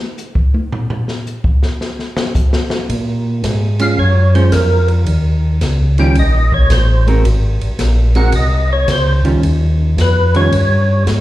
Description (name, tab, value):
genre	soul jazz organ trio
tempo	110 BPM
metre	4/4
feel	swing 67% on 8ths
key	unclear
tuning	A4 = 441 Hz
part	open jazz drum kit	drums	0.2-11.2 s	hi-hat, kick drum, ride cymbal, snare drum, toms	-19 LUFS	equal	none
part	tonewheel organ	bass	2.9-11.2 s	Ab1 to Bb2	-12 LUFS	equal	chorus vibrato, slow rotary speaker
part	percussive tonewheel organ	melody	3.8-11.0 s	Bb4 to G5	-18 LUFS	equal	slow rotary speaker, chorus vibrato, slapback echo
part	vintage hollow-body jazz guitar	accompaniment	3.8-10.5 s	Eb3 to Bb4	-19 LUFS	right 2 dB	slapback echo
room	light reverb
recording	live gig heard through the venue's PA, club reverb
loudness	-12 LUFS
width	side -15 dB against mid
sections	0.0-11.2 A section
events	tonewheel organ solo 0.0-11.2; drum solo 0.0-2.9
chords	0.0 N.C.; 2.9 Bbm7; 5.1 Eb7(no3); 7.3 Abadd9; 9.4 Eb9